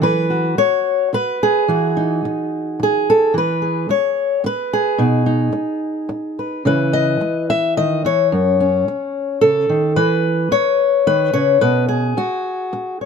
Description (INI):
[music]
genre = folk, solo fingerstyle acoustic guitar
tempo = 109 BPM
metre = 3/4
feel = straight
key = unclear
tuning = A4 = 440 Hz
[part]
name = fingerpicked steel-string acoustic guitar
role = solo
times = 0.0-13.1 s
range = F#2 to E5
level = -15 LUFS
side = left 1 dB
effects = none
[sound]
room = light reverb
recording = close, detailed microphones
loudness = -15 LUFS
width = side -6 dB against mid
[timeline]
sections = 0.0-13.1 A section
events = none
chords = 0.0 Esus2; 1.7 Emaj9; 3.3 E; 5.0 B; 6.7 C#m; 8.3 F#m; 10.0 E5; 11.6 B5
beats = | 0.01 0.57 1.13 | 1.68 2.24 2.79 | 3.34 3.89 4.44 | 4.98 5.53 6.09 | 6.65 7.21 7.76 | 8.31 8.87 9.42 | 9.96 10.51 11.07 | 11.62 12.17 12.74